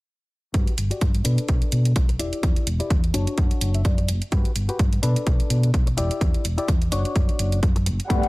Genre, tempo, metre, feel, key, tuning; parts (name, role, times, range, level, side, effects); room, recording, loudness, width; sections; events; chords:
filtered disco house; 127 BPM; 4/4; swing 56% on 16ths; A4 = 440 Hz
semi-hollow electric guitar; riff; 0.5-8.3 s; D4 to A5; -30 LUFS; left 3 dB; sidechain pumping, low-pass filter
hollow-body short-scale fingered electric bass; bass; 0.5-8.2 s; E1 to B2; -23 LUFS; equal; tube saturation, sidechain pumping, low-pass filter
electronic hi-hat; drums; 0.5-8.3 s; -32 LUFS; right 2 dB; overdrive, sidechain pumping on hats
electronic kick drum; drums; 0.5-8.2 s; -21 LUFS; equal; overdrive
mellow synth brass; accompaniment; 8.1-8.3 s; A3 to F#5; -22 LUFS; left 3 dB; chorus, phaser, sidechain pumping, low-pass filter
muted chamber violin section; sustained chords; 8.1-8.3 s; G3 to B5; -26 LUFS; left 2 dB; sidechain pumping, low-pass filter
digital ambience; -19 LUFS; side -21 dB against mid
0.5-8.3 A section
filter sweep 0.5-8.3; clean electric guitar fill 2.9-4.3
0.5 Gmaj7; 1.3 Bm7; 2.2 Em7; 3.1 Dmaj7/F#; 4.3 Gmaj7; 5.0 Bm7; 6.0 Em7; 6.9 Dmaj7/F#